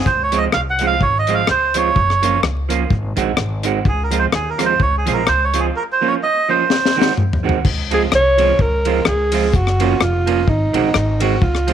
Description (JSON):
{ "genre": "ska", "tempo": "127 BPM", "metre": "4/4", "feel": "swing 55% on 8ths", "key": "Db major", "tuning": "A4 = 440 Hz", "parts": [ { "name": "melodica", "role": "melody", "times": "0.0-7.1 s", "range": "Ab4 to Gb5", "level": "-17 LUFS", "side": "right 4 dB", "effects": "none" }, { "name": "upright bass", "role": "bass", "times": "0.1-11.7 s", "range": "F1 to Eb2", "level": "-20 LUFS", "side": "equal", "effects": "none" }, { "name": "deep reggae drum kit", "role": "drums", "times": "0.1-11.7 s", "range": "crash cymbal, hi-hat, kick drum, ride cymbal, rim click, snare drum, toms", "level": "-19 LUFS", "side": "left 3 dB", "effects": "none" }, { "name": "vintage hollow-body jazz guitar", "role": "accompaniment", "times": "0.3-11.7 s", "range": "Eb3 to Gb4", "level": "-21 LUFS", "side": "right 9 dB", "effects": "slapback echo" }, { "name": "breathy alto saxophone", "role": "melody", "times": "7.9-11.7 s", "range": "Eb4 to Db5", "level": "-17 LUFS", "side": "right 1 dB", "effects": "none" } ], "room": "light reverb", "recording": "1960s-style stereo, vinyl crackle", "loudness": "-14 LUFS", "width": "side -9 dB against mid", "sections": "0.0-7.6 A section; 7.6-11.7 B section", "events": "drum fill 6.7-7.6; alto saxophone solo 7.6-11.7", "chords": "0.1 Dbmaj7; 2.0 Gbmaj7; 2.9 Ab7; 3.9 Dbmaj7; 5.8 Dbmaj13/F; 6.7 Ab7; 7.6 Dbmaj7; 9.5 Gbmaj7; 10.5 Ab7", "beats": "| 0.06 0.53 1.01 1.48 | 1.96 2.43 2.91 3.38 | 3.86 4.33 4.80 5.28 | 5.75 6.22 6.70 7.17 | 7.64 8.12 8.59 9.06 | 9.53 10.01 10.48 10.95 | 11.42" }